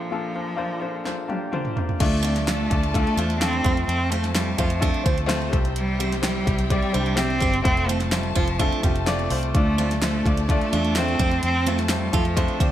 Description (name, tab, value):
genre	piano-driven pop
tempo	127 BPM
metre	4/4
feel	straight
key	F major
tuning	A4 = 436 Hz
part	rich cello	melody	0.0-12.6 s	F3 to C4	-26 LUFS	right 1 dB	none
part	clear upright piano	accompaniment	0.0-12.7 s	Bb1 to D5	-27 LUFS	left 3 dB	none
part	pop drum kit	drums	1.1-12.7 s	crash cymbal, hi-hat, kick drum, snare drum, toms	-24 LUFS	equal	none
part	warm symphonic string section	sustained chords	2.0-12.7 s	E4 to A5	-34 LUFS	left 3 dB	none
part	vintage muted fingered electric bass	bass	2.0-12.7 s	F1 to F2	-26 LUFS	equal	none
part	picked steel-string acoustic guitar	riff	2.2-12.7 s	C4 to F4	-31 LUFS	right 8 dB	none
room	light reverb, small room ambience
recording	bright 1980s-style digital production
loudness	-20 LUFS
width	side -12 dB against mid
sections	0.0-2.0 A section; 2.0-12.7 B section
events	drum fill 1.1-2.0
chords	0.0 Bbadd9; 2.0 Dm; 3.6 F; 5.5 C; 7.7 F; 9.5 Dm; 11.2 F